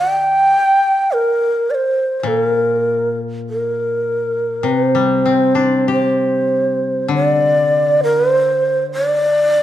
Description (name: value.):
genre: japanese traditional.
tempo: 47-53 BPM.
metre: 4/4.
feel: rubato.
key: unclear.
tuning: A4 = 441 Hz.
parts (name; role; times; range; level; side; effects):
breathy long shakuhachi; melody; 0.0-9.6 s; Bb4 to G5; -14 LUFS; right 1 dB; none.
koto; accompaniment; 0.0-9.6 s; Bb2 to G4; -19 LUFS; left 4 dB; none.
room: moderate recital hall reverb, RT60 1.6 s.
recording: dark, warm production.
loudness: -14 LUFS.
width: side -12 dB against mid.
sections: 0.0-7.1 A section; 7.1-9.6 B section.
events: none.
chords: none.